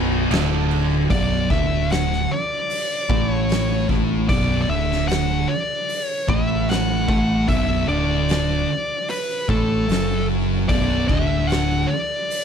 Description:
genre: stoner and doom metal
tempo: 75 BPM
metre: 4/4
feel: straight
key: B minor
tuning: A4 = 439 Hz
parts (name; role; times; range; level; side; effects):
- overdriven semi-hollow guitar; riff; 0.0-1.1 s; B1 to D3; -27 LUFS; left 1 dB; none
- thick fuzz guitar; riff; 0.0-11.9 s; B1 to A3; -25 LUFS; left 12 dB; distortion
- thick fuzz guitar; riff; 0.0-11.9 s; B1 to A3; -24 LUFS; right 13 dB; distortion
- growling picked electric bass; bass; 0.0-11.9 s; B0 to A1; -24 LUFS; equal; overdrive, tube saturation
- oversized low-tuned drum kit; drums; 0.3-12.4 s; crash cymbal, hi-hat, kick drum, snare drum; -25 LUFS; equal; none
- fuzz lead guitar; melody; 1.1-12.4 s; A4 to F#5; -24 LUFS; left 1 dB; distortion, slapback echo
room: little or no reverb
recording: none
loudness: -18 LUFS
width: side -7 dB against mid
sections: 0.0-1.1 A section; 1.1-12.4 B section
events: none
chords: 0.0 Bm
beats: 0.31 | 1.10 1.90 2.70 3.50 | 4.29 5.09 5.89 6.69 | 7.49 8.29 9.09 9.89 | 10.70 11.50 12.30

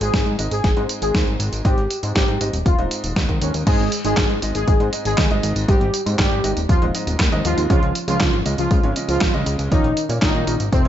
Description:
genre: italo disco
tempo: 119 BPM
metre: 4/4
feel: straight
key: Ab major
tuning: A4 = 441 Hz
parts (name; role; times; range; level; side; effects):
- analog synth brass; melody; 0.0-10.9 s; C3 to Ab4; -23 LUFS; equal; chorus, tape echo
- clear baby grand piano; stabs; 0.0-10.9 s; Ab2 to Eb5; -28 LUFS; right 1 dB; none
- fat analog bass; bass; 0.0-10.9 s; Eb1 to Bb2; -23 LUFS; equal; none
- clean 12-bit digital drum machine; drums; 0.0-10.9 s; crash cymbal, handclaps, hi-hat, snare drum, tambourine; -24 LUFS; right 1 dB; gated reverb
- electronic kick drum; drums; 0.1-10.8 s; none; -19 LUFS; equal; overdrive
room: little or no reverb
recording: nothing above 7.8 kHz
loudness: -17 LUFS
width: side -11 dB against mid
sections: 0.0-3.7 A section; 3.7-10.9 B section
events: none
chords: 0.0 Ab; 7.7 Db; 9.7 Bbm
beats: 0.14 0.64 1.15 | 1.65 2.15 2.66 3.16 | 3.67 4.17 4.67 5.18 | 5.68 6.19 6.69 7.20 | 7.70 8.21 8.71 9.21 | 9.72 10.22 10.73

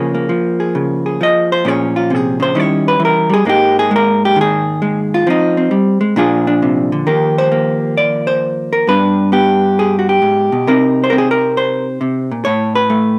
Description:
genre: solo jazz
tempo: 133 BPM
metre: 4/4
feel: swing 67% on 8ths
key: Eb major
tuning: A4 = 440 Hz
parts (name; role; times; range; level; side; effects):
- vintage hollow-body jazz guitar; solo; 0.0-13.2 s; G2 to Eb5; -14 LUFS; equal; none
room: light reverb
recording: recorded outdoors, with no room sound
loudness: -14 LUFS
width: mono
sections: 0.0-7.1 A section; 7.1-13.2 B section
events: hollow-body jazz guitar solo 0.0-7.1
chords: 0.0 Db6; 1.7 Bbm7; 2.6 Eb7b9; 3.5 Absus2; 5.3 Fm9; 6.2 Bb7; 7.1 Ebmaj9; 8.9 G; 10.7 Cm7; 12.4 Asus2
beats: 0.30 0.75 1.20 | 1.65 2.10 2.56 3.01 | 3.46 3.91 4.36 4.81 | 5.26 5.71 6.16 6.61 | 7.06 7.51 7.96 8.41 | 8.86 9.31 9.76 10.21 | 10.66 11.11 11.55 12.00 | 12.45 12.90

